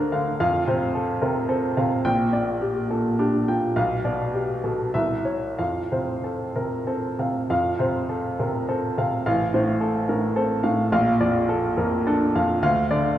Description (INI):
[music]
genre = classical, romantic character piece for solo piano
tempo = 90-111 BPM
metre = 3/4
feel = rubato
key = F major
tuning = A4 = 440 Hz
[part]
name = clear baby grand piano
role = solo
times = 0.0-13.2 s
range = A1 to G5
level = -21 LUFS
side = equal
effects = none
[sound]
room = wet recital hall reverb, RT60 1.4 s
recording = heard from further back in the room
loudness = -21 LUFS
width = side -12 dB against mid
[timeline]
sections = 0.0-7.5 A section; 7.5-13.2 A section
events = none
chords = 0.4 F; 2.1 Gm/Bb; 3.8 G7/B; 4.9 C; 5.6 F; 9.3 F/A; 10.9 Bbmaj7; 12.6 Bb/D (rootless)